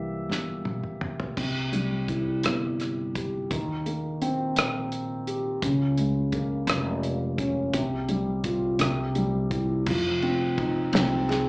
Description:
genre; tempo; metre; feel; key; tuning
six-eight pop ballad; 56 BPM (dotted quarters); 6/8; straight; unclear; A4 = 440 Hz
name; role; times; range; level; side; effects
felt-muted upright piano; accompaniment; 0.0-11.5 s; C3 to E5; -26 LUFS; equal; none
upright bass; bass; 0.0-11.5 s; F1 to Eb2; -32 LUFS; equal; none
damped 70s drum kit; drums; 0.3-11.5 s; crash cymbal, hi-hat, kick drum, ride cymbal, rim click, snare drum, toms; -28 LUFS; equal; none
room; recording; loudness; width
moderate club reverb, RT60 0.7 s; live gig heard through the venue's PA, club reverb, small speaker sound; -24 LUFS; side -26 dB against mid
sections
0.0-1.4 A section; 1.4-9.9 B section; 9.9-11.5 C section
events
felt piano solo 0.0-1.4; drum fill 0.3-1.4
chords
0.0 C7; 1.4 C; 3.5 Eb6; 5.6 Bbm7/Db; 7.7 Csus4; 8.8 C; 9.9 Fm7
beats
0.30 | 1.37 2.44 | 3.51 4.57 | 5.62 6.68 | 7.74 8.80 | 9.87 10.94

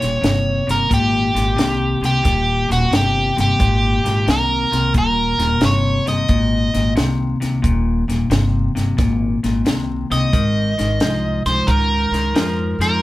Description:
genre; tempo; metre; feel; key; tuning
electric blues shuffle; 89 BPM; 4/4; swing 67% on 8ths; Eb mixolydian; A4 = 441 Hz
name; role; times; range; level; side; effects
biting overdriven guitar; melody; 0.0-13.0 s; Gb4 to Eb5; -19 LUFS; right 1 dB; none
clean electric guitar; riff; 0.0-13.0 s; Eb2 to F3; -20 LUFS; left 2 dB; none
upright bass; bass; 0.0-13.0 s; Eb1 to F2; -20 LUFS; equal; none
compact cocktail drum kit; drums; 0.0-12.9 s; hi-hat, kick drum, snare drum; -21 LUFS; equal; none
room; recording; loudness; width
light reverb; band playing live in one room; -15 LUFS; side -16 dB against mid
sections
0.0-13.0 A section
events
none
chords
0.0 Eb; 10.3 Abadd9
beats
0.23 0.90 1.57 | 2.25 2.92 3.59 4.27 | 4.94 5.62 6.29 6.96 | 7.64 8.31 8.98 9.66 | 10.33 11.01 11.68 12.35

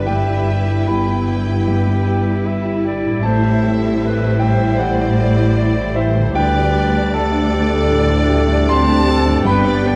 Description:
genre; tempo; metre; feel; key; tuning
cinematic, emotional film score for orchestra; 77 BPM; 4/4; rubato; unclear; A4 = 440 Hz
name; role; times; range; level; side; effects
rich symphonic violin section; melody; 0.0-10.0 s; B4 to D5; -31 LUFS; equal; none
clear clarinet; second line; 0.0-10.0 s; E4 to E5; -28 LUFS; equal; none
rich chamber violin section; second line; 0.0-10.0 s; C5 to A5; -29 LUFS; equal; none
rich symphonic viola section; accompaniment; 0.0-10.0 s; G3 to E4; -28 LUFS; equal; none
warm grand piano; accompaniment; 0.0-10.0 s; D2 to C6; -22 LUFS; equal; none
mellow French horn section; sustained chords; 0.0-10.0 s; E3 to C4; -25 LUFS; equal; none
concert harp; arpeggios; 0.0-10.0 s; G2 to B5; -31 LUFS; equal; none
dark studio double bass section; bass; 0.0-10.0 s; G1 to D2; -23 LUFS; equal; none
rich symphonic cello section; bass; 0.0-10.0 s; D2 to A2; -23 LUFS; equal; none
room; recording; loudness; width
moderate scoring stage reverb, RT60 1.9 s; dark, warm production; -16 LUFS; mono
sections
0.0-10.0 A section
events
none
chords
0.1 Em/G; 3.2 Am7; 6.4 Dsus4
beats
| 0.07 0.88 1.66 2.44 | 3.23 4.02 4.81 5.59 | 6.36 7.13 7.91 8.69 | 9.46

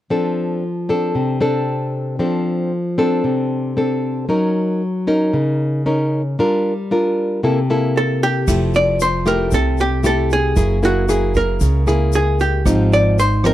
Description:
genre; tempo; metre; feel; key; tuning
bossa nova; 115 BPM; 4/4; straight; unclear; A4 = 440 Hz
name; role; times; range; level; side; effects
nylon-string guitar; accompaniment; 0.1-13.5 s; Ab2 to Bb4; -17 LUFS; left 1 dB; none
archtop guitar, miked and amplified; melody; 8.0-13.5 s; Gb4 to D5; -18 LUFS; right 1 dB; none
upright bass; bass; 8.5-13.5 s; F1 to Db2; -19 LUFS; right 1 dB; none
jazz brush drum kit; drums; 8.5-13.5 s; crash cymbal, hi-hat, kick drum, rim click; -23 LUFS; right 1 dB; none
egg shaker; percussion; 8.5-13.5 s; none; -35 LUFS; left 14 dB; none
room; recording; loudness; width
small room ambience; dry, close 1970s-style studio recording; -15 LUFS; side -13 dB against mid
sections
0.1-8.5 A section; 8.5-13.5 B section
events
none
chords
0.1 F6; 4.3 Gb6; 6.4 Gm7; 7.4 C6; 8.5 Fmaj9; 10.6 Gb9; 12.7 Ab6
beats
| 0.11 0.63 1.16 1.68 | 2.20 2.72 3.25 3.77 | 4.29 4.81 5.34 5.86 | 6.38 6.91 7.43 7.95 | 8.47 9.00 9.52 10.04 | 10.57 11.09 11.61 12.13 | 12.66 13.18

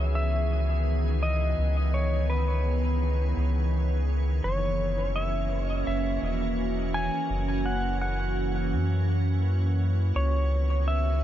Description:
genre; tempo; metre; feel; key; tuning
ambient dub; 84 BPM; 4/4; swing 55% on 16ths; C# dorian; A4 = 440 Hz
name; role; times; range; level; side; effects
clean lap steel guitar; melody; 0.0-11.2 s; B4 to G#5; -32 LUFS; left 1 dB; dub echo
soft additive organ-like pad; sustained chords; 0.0-11.2 s; D#3 to C#5; -31 LUFS; right 2 dB; ensemble chorus, built-in reverb
soft dub sub bass; bass; 0.0-11.2 s; E1 to F#2; -26 LUFS; equal; tube saturation
room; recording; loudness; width
digital ambience; dark, warm production, nothing above 7.5 kHz; -24 LUFS; side -12 dB against mid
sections
0.0-11.2 A section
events
none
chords
0.0 C#m9; 4.4 F#7; 10.2 C#m9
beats
0.15 0.87 | 1.58 2.30 3.01 3.73 | 4.44 5.15 5.87 6.58 | 7.30 8.01 8.72 9.44 | 10.15 10.87

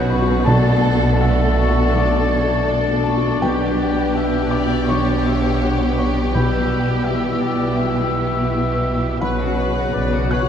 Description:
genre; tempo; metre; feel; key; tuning
cinematic, emotional film score for orchestra; 82 BPM; 4/4; rubato; unclear; A4 = 440 Hz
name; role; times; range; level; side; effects
rich symphonic violin section; melody; 0.0-10.5 s; F#4 to B4; -27 LUFS; left 3 dB; none
dark clarinet; second line; 0.0-10.5 s; B4 to D5; -27 LUFS; left 4 dB; none
hollow small flute group; second line; 0.0-10.5 s; E6 to A6; -29 LUFS; left 4 dB; none
rich studio violin section; second line; 0.0-10.5 s; F#4 to F#5; -29 LUFS; left 2 dB; none
warm oboe; second line; 0.0-10.5 s; C#5 to G5; -30 LUFS; right 1 dB; none
felt-muted upright piano; accompaniment; 0.0-10.5 s; B1 to F#6; -26 LUFS; left 2 dB; none
rich studio viola section; accompaniment; 0.0-10.5 s; A3 to E4; -30 LUFS; right 2 dB; none
mellow French horn section; sustained chords; 0.0-10.5 s; C#3 to E4; -26 LUFS; left 2 dB; none
concert harp; arpeggios; 0.0-10.5 s; B2 to B4; -29 LUFS; left 6 dB; none
dark studio cello section; bass; 0.0-10.5 s; B2; -22 LUFS; right 1 dB; none
rich symphonic double bass section; bass; 0.0-10.5 s; B1; -22 LUFS; right 2 dB; none
timpani; percussion; 0.5-7.4 s; B2; -24 LUFS; equal; none
room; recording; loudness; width
wet scoring stage reverb, RT60 1.9 s; dark, warm production; -16 LUFS; side -8 dB against mid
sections
0.0-10.5 A section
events
none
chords
0.5 D/B; 3.4 G/B; 6.3 Em/B; 9.2 Bsus2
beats
| 0.47 1.21 1.95 2.68 | 3.42 4.15 4.89 5.63 | 6.34 7.06 7.77 8.49 | 9.21 9.94

